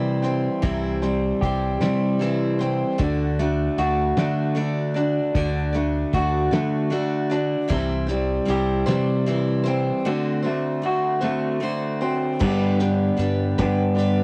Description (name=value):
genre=folk rock and heartland rock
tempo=51 BPM (dotted quarters)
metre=6/8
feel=straight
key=D mixolydian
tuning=A4 = 441 Hz
part: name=picked steel-string acoustic guitar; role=accompaniment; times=0.0-14.2 s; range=C3 to D5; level=-29 LUFS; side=equal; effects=cassette tape
part: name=electric guitar through a small old amp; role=riff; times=0.0-14.2 s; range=G2 to G4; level=-26 LUFS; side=equal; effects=cassette tape
part: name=picked electric bass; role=bass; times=0.0-14.2 s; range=C2 to D3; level=-28 LUFS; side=equal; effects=none
part: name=cloth-damped thuddy drum kit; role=drums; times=0.2-14.2 s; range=crash cymbal, hi-hat, kick drum, snare drum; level=-29 LUFS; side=equal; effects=cassette tape
room=small room ambience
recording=home recording on cassette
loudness=-23 LUFS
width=mono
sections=0.0-12.4 A section; 12.4-14.2 B section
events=none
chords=0.0 C; 3.0 D; 7.7 C; 10.1 D7; 12.4 G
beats=| 0.62 1.80 | 2.98 4.17 | 5.35 6.53 | 7.71 8.89 | 10.06 11.24 | 12.42 13.60